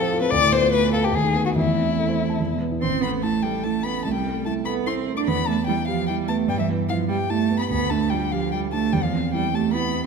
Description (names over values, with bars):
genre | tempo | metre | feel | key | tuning
quick classical-period movement for piano trio | 147 BPM | 3/4 | straight | A minor | A4 = 440 Hz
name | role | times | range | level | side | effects
warm violin | melody | 0.0-10.0 s | E4 to D6 | -25 LUFS | left 7 dB | none
warm cello | second line | 0.0-10.0 s | E3 to D4 | -25 LUFS | right 8 dB | none
dark concert grand piano | accompaniment | 0.0-10.1 s | A1 to A5 | -24 LUFS | right 1 dB | none
room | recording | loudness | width
moderate scoring stage reverb, RT60 1.7 s | minimal, uncompressed stereo recording | -20 LUFS | side -5 dB against mid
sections
0.0-2.8 A section; 2.8-10.1 A section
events
none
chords
0.3 Bm7b5/D; 1.1 B7/D#; 1.6 Am/E; 2.4 E; 2.8 A5; 4.1 Am/C; 5.3 Em; 6.5 Em/G; 7.7 G5/D; 8.9 C/E